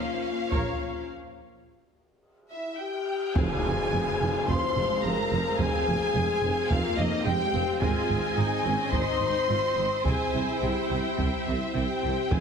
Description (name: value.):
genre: cinematic, epic orchestral film score.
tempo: 107 BPM.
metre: 4/4.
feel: straight.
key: F minor.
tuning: A4 = 438 Hz.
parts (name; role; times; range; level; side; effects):
warm studio violin section; melody; 0.0-12.4 s; Eb5 to C6; -36 LUFS; left 2 dB; none.
warm symphonic violin section; second line; 0.0-12.4 s; Eb5 to C6; -36 LUFS; left 1 dB; none.
clear symphonic string section; sustained chords; 0.0-12.4 s; Bb3 to F5; -34 LUFS; equal; none.
mellow French horn section; sustained chords; 0.0-12.4 s; Eb4 to C5; -30 LUFS; left 5 dB; none.
dark symphonic viola section; accompaniment; 0.5-0.8, 4.5-12.0 s; F3 to Db5; -36 LUFS; right 2 dB; none.
mellow tuba; bass; 0.5-12.4 s; F1 to C2; -34 LUFS; right 4 dB; none.
warm symphonic cello section; bass; 0.5-12.4 s; F2 to C3; -34 LUFS; right 2 dB; none.
warm symphonic double bass section; bass; 0.5-12.4 s; F1 to C2; -34 LUFS; right 4 dB; none.
taiko ensemble; drums; 0.5-12.4 s; none; -31 LUFS; equal; none.
cymbal swell and tam-tam; percussion; 1.1-5.6 s; none; -38 LUFS; left 1 dB; none.
mellow large flute ensemble; second line; 2.5-12.4 s; Eb5 to C6; -35 LUFS; right 2 dB; none.
impact; sound effects; 3.4-5.6 s; none; -39 LUFS; equal; none.
room: wet scoring stage reverb, RT60 1.7 s.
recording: heavily compressed radio sound, multiband compression.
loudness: -24 LUFS.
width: side -6 dB against mid.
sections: 0.0-3.4 A section; 3.4-12.4 B section.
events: break 1.1-3.4; drum fill 2.5-3.4; band accent 3.4-3.9; impact 3.4-5.6.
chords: 0.0 Bbmadd9; 3.4 Fm; 7.8 Ab; 10.1 C.